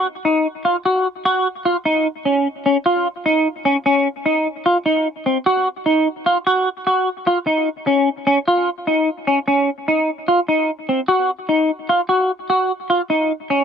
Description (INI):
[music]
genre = progressive instrumental, progressive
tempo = 149 BPM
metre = 7/4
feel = straight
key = unclear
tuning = A4 = 443 Hz
[part]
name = semi-hollow electric guitar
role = solo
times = 0.0-13.6 s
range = C4 to Gb4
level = -16 LUFS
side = equal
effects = analog chorus, tape echo
[sound]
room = moderate booth ambience, RT60 0.2 s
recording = dark, warm production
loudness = -16 LUFS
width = side -7 dB against mid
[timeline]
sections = 0.0-13.6 A section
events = none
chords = none